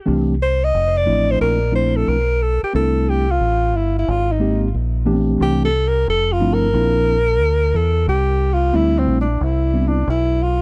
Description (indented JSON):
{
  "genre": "hip hop, jazz-hop",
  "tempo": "90 BPM",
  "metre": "4/4",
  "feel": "swing 65% on 16ths",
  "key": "C mixolydian",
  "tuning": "A4 = 440 Hz",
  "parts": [
    { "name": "mellow tine electric piano", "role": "accompaniment", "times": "0.1-10.0 s", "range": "E3 to G4", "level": "-22 LUFS", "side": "equal", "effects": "none" },
    { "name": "deep dub fingered electric bass", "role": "bass", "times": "0.1-10.6 s", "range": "F1 to E2", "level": "-22 LUFS", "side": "equal", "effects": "none" },
    { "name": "breathy alto saxophone", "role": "melody", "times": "0.4-10.6 s", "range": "C4 to Eb5", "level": "-21 LUFS", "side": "equal", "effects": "tape echo" }
  ],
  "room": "little or no reverb",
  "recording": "dry, close 1970s-style studio recording",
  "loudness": "-18 LUFS",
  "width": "mono",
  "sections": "0.0-10.6 A section",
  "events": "alto saxophone solo 0.0-10.6",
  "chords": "0.1 C69; 0.7 F; 1.4 Bbmaj9#11; 2.7 C69; 4.1 Abmaj9; 5.4 C69; 6.1 F; 6.7 Bbadd9; 8.1 C69; 9.4 Cmaj9",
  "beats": "| 0.07 0.74 1.41 2.08 | 2.74 3.41 4.08 4.74 | 5.41 6.08 6.74 7.41 | 8.07 8.74 9.41 10.07"
}